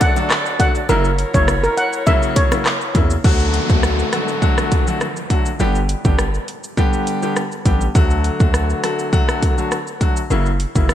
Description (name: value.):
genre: dancehall.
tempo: 102 BPM.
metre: 4/4.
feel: straight.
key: D major.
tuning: A4 = 440 Hz.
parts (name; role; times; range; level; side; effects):
steel pan; melody; 0.0-2.5 s; A#4 to F#5; -20 LUFS; equal; ping-pong delay.
clear concert grand piano; accompaniment; 0.0-10.9 s; C#3 to G4; -21 LUFS; left 2 dB; none.
warm woodwind section; sustained chords; 0.0-3.2 s; F#3 to D5; -26 LUFS; equal; sidechain pumping.
pop drum kit; drums; 0.0-10.9 s; crash cymbal, handclaps, hi-hat, kick drum, rim click, shaker; -18 LUFS; equal; vintage 12-bit sampler grit, gated reverb.
bongos; percussion; 0.0-3.1 s; none; -31 LUFS; left 7 dB; none.
hard-hitting 808-style bass; bass; 0.9-10.9 s; F#1 to E2; -19 LUFS; equal; none.
downlifter; sound effects; 3.2-8.0 s; none; -26 LUFS; equal; none.
room: light reverb, small room ambience.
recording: bright 1980s-style digital production.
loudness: -15 LUFS.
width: side -11 dB against mid.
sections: 0.0-3.2 A section; 3.2-10.9 B section.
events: none.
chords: 0.0 D; 0.9 F#7; 3.2 D; 5.6 G; 8.0 D; 10.3 F#7.